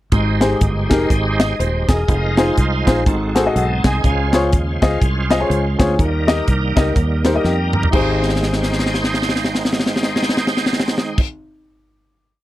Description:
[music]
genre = uptempo gospel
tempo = 123 BPM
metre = 4/4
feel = swing 60% on 8ths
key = Ab major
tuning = A4 = 440 Hz
[part]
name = warm concert grand piano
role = accompaniment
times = 0.1-11.2 s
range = Ab1 to Bb5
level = -20 LUFS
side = left 2 dB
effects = none
[part]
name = bright tonewheel organ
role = sustained chords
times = 0.1-11.2 s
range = Gb3 to G5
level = -22 LUFS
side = right 3 dB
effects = slow rotary speaker, chorus vibrato
[part]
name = fingered electric bass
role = bass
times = 0.1-11.2 s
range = Eb1 to F2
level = -20 LUFS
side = equal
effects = none
[part]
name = tight funk drum kit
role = drums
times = 0.1-11.3 s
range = crash cymbal, hi-hat, kick drum, snare drum, toms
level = -18 LUFS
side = equal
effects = none
[sound]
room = little or no reverb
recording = dry, close 1970s-style studio recording, faint mains hum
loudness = -15 LUFS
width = side -15 dB against mid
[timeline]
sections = 0.1-7.9 verse; 7.9-11.8 final chord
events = drum fill 7.4-7.9, 8.2-11.1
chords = 0.1 Abmaj7; 2.1 Fm7; 3.1 Ab7b9; 4.0 Dbmaj7; 6.0 Eb; 7.9 Abmaj7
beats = | 0.12 0.61 1.10 1.59 | 2.08 2.57 3.06 3.55 | 4.04 4.53 5.02 5.50 | 5.99 6.48 6.96 7.45 | 7.93 8.41 8.90 9.38 | 9.86 10.35 10.83

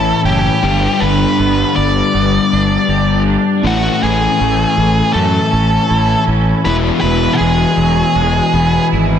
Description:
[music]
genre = rock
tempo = 80 BPM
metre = 4/4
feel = straight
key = A major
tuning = A4 = 440 Hz
[part]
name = octave-fuzz lead guitar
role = melody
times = 0.0-8.9 s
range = F#4 to D5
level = -16 LUFS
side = right 1 dB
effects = distortion
[part]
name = electric guitar through a small old amp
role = arpeggios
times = 0.0-9.2 s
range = E2 to G4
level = -21 LUFS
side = right 6 dB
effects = analog chorus, slapback echo
[part]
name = overdriven semi-hollow guitar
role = riff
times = 0.0-9.2 s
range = G2 to E4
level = -15 LUFS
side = left 5 dB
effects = none
[part]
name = fuzz fingered electric bass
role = bass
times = 0.0-9.2 s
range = E1 to F#2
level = -17 LUFS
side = right 1 dB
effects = overdrive
[sound]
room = moderate lush hall reverb, RT60 2.4 s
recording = big arena sound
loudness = -11 LUFS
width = side -8 dB against mid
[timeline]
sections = 0.0-9.2 A section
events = none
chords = 0.0 A; 0.6 G; 3.6 A; 6.7 Eadd9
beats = | 0.62 1.37 2.13 2.88 | 3.64 4.39 5.15 5.90 | 6.66 7.41 8.17 8.92

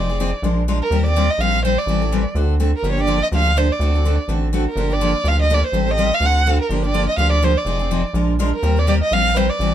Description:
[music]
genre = acoustic string swing (jazz manouche)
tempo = 249 BPM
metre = 4/4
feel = swing 55% on 8ths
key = G minor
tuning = A4 = 440 Hz
[part]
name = warm violin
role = melody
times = 0.0-9.7 s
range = Bb4 to F#5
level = -20 LUFS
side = right 2 dB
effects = none
[part]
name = picked steel-string acoustic guitar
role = accompaniment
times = 0.0-9.7 s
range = D3 to Bb4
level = -22 LUFS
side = left 2 dB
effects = none
[part]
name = rubbery square bass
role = bass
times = 0.0-9.7 s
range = F1 to Eb2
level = -19 LUFS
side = equal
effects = none
[sound]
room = little or no reverb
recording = close, detailed microphones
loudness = -16 LUFS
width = side -11 dB against mid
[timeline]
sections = 0.0-6.7 A section; 6.7-9.7 A section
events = none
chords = 0.4 Bb7; 0.9 Eb6; 1.9 Am7; 2.4 D7; 2.8 Gm7; 3.8 D7; 4.8 Gm7; 5.7 Am7b5; 6.2 D7; 6.7 Gm7; 7.7 Fm7; 8.1 Bb7; 8.6 Eb6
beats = 0.19 0.43 0.67 | 0.91 1.15 1.40 1.64 | 1.88 2.12 2.36 2.60 | 2.84 3.08 3.32 3.56 | 3.81 4.05 4.29 4.53 | 4.77 5.01 5.25 5.49 | 5.73 5.97 6.22 6.46 | 6.70 6.94 7.18 7.42 | 7.66 7.91 8.15 8.39 | 8.63 8.87 9.11 9.36 | 9.60

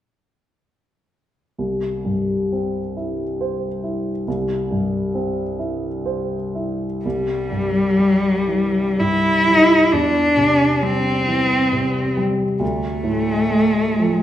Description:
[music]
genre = classical, romantic duo for cello and grand piano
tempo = 56-70 BPM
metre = 3/4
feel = rubato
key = C major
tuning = A4 = 438 Hz
[part]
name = warm grand piano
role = accompaniment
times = 1.6-14.2 s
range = C2 to C5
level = -21 LUFS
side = equal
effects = none
[part]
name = rich cello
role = melody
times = 7.1-14.2 s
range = G3 to E4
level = -17 LUFS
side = equal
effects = none
[sound]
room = wet recital hall reverb, RT60 1.7 s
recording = minimal, uncompressed stereo recording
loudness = -17 LUFS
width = side -11 dB against mid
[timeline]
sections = 1.6-7.0 A section; 7.0-14.2 B section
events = none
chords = 1.6 C; 9.9 C/E; 12.6 Dm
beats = | 1.58 2.52 3.40 | 4.27 5.14 6.05 | 7.05 7.98 9.00 | 9.94 10.83 11.74 | 12.62 13.51

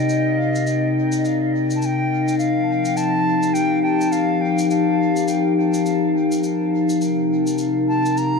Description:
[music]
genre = ambient dub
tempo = 104 BPM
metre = 4/4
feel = swing 60% on 16ths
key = unclear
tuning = A4 = 440 Hz
[part]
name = bright reedy wooden flute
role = melody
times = 0.0-8.4 s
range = Eb5 to Bb5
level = -24 LUFS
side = equal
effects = dub echo
[part]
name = warbly tape-like pad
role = sustained chords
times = 0.0-8.4 s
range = C3 to Bb4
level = -18 LUFS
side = left 2 dB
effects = chorus, built-in reverb
[part]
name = shaker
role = drums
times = 0.1-8.3 s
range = none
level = -36 LUFS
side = left 1 dB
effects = dub echo
[sound]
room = moderate concert hall reverb, RT60 2.0 s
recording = dark, warm production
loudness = -17 LUFS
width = side -4 dB against mid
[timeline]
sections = 0.0-8.4 A section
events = none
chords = 0.0 Cm7; 2.4 F7sus4; 7.0 Cm7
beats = | 0.09 0.67 1.24 1.82 | 2.40 2.97 3.55 4.13 | 4.70 5.28 5.86 6.43 | 7.01 7.59 8.16

